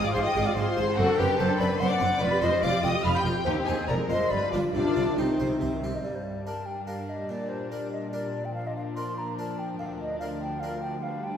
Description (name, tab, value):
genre	classical, baroque-style concerto movement with solo episodes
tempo	144 BPM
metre	3/4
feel	straight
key	C minor, G minor from 6.0 s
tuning	A4 = 440 Hz
part	warm studio violin section	melody	0.0-11.4 s	Bb4 to G6	-36 LUFS	left 3 dB	none
part	rich chamber violin section	second line	0.0-11.4 s	C4 to G5	-33 LUFS	left 2 dB	none
part	harpsichord	accompaniment	0.0-11.4 s	D2 to D5	-37 LUFS	right 1 dB	none
part	rich symphonic viola section	accompaniment	0.0-11.4 s	Eb3 to Ab4	-34 LUFS	equal	none
part	rich chamber double bass section	bass	0.0-5.9 s	F1 to Eb2	-32 LUFS	right 3 dB	none
part	rich studio cello section	bass	0.0-11.4 s	D2 to C3	-34 LUFS	right 2 dB	none
part	mellow hollow silver concert flute	melody	0.1-11.4 s	Eb4 to C6	-29 LUFS	left 1 dB	none
room	wet recital hall reverb, RT60 1.6 s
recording	heard from further back in the room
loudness	-25 LUFS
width	side -8 dB against mid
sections	0.0-6.0 A section; 6.0-11.4 B section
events	none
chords	0.0 Fm/Ab; 1.0 D7/F#; 2.2 G5/F; 3.5 Cm/Eb; 3.9 Fm; 4.3 G7; 4.7 Cm; 6.0 Gm; 7.3 Gm/Bb; 8.6 Bb; 9.8 Bb/D